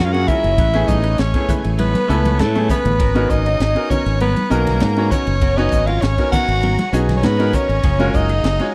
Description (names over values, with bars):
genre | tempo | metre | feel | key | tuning
electric jazz fusion | 99 BPM | 4/4 | straight | unclear | A4 = 438 Hz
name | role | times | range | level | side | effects
growling soprano saxophone | melody | 0.0-8.7 s | A4 to F#5 | -24 LUFS | equal | slapback echo
clear tenor saxophone | second line | 0.0-8.7 s | A3 to F#4 | -27 LUFS | equal | none
string machine, full ensemble | sustained chords | 0.0-8.7 s | A3 to A#5 | -35 LUFS | equal | none
clean electric guitar | stabs | 0.0-8.5 s | E#3 to B4 | -30 LUFS | equal | analog chorus
modern bright fingered electric bass | bass | 0.0-8.6 s | F#1 to A2 | -20 LUFS | equal | none
bright concert grand piano | accompaniment | 0.1-8.7 s | F#3 to C#5 | -25 LUFS | equal | none
crisp fusion drum kit | drums | 0.1-8.7 s | hi-hat, kick drum, ride cymbal, snare drum | -24 LUFS | equal | none
congas | percussion | 0.3-7.7 s | none | -26 LUFS | equal | none
room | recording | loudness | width
little or no reverb | none | -17 LUFS | mono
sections
0.0-8.7 A section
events
drum fill 2.5-3.0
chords
0.0 F#maj9; 0.6 Amaj9; 3.0 G#m11; 7.8 F#maj9